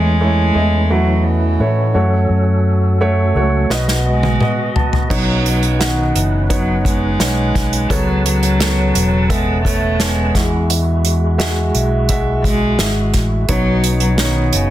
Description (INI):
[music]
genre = piano-driven pop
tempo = 86 BPM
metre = 4/4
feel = straight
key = unclear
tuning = A4 = 440 Hz
[part]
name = warm cello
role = melody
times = 0.0-14.7 s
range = C#3 to A3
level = -20 LUFS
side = equal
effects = none
[part]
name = warm concert grand piano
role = accompaniment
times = 0.0-14.7 s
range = B2 to A5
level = -20 LUFS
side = right 2 dB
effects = none
[part]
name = tonewheel organ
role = sustained chords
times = 0.0-14.7 s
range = E3 to A5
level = -26 LUFS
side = left 1 dB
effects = overdrive, chorus vibrato, fast rotary speaker
[part]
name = fingered electric bass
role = bass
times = 0.0-14.7 s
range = E1 to A2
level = -17 LUFS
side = equal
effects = none
[part]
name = unplugged drum kit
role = drums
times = 3.7-14.7 s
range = crash cymbal, hi-hat, kick drum, snare drum, toms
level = -19 LUFS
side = equal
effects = none
[sound]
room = light reverb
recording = dense, heavily limited modern master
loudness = -13 LUFS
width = side -13 dB against mid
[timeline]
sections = 0.0-5.1 A section; 5.1-14.7 B section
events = grand piano fill 3.7-5.1; drum fill 3.7-5.1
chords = 0.0 A/E; 2.0 F#m; 3.7 B; 5.1 Badd9; 7.9 Aadd9; 10.3 Eadd9; 13.5 Badd9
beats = 0.20 0.90 1.60 | 2.30 3.00 3.70 4.40 | 5.10 5.80 6.50 7.20 | 7.90 8.60 9.30 9.99 | 10.69 11.39 12.09 12.79 | 13.49 14.18